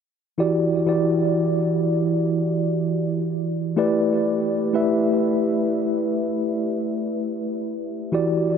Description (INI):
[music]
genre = R&B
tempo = 62 BPM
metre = 4/4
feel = swing 58% on 16ths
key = unclear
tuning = A4 = 440 Hz
[part]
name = mellow tine electric piano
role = solo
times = 0.4-8.6 s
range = E3 to E5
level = -20 LUFS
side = equal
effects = medium stereo tremolo, diffuse ambient delay
[sound]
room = wet huge ambient reverb, RT60 6.2 s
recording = dreamy mix soaked in reverb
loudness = -20 LUFS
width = side -7 dB against mid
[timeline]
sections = 0.4-8.1 A section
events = none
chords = 0.4 Em7; 3.8 A7sus4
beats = | 0.39 1.35 2.32 3.29 | 4.26 5.23 6.19 7.16 | 8.13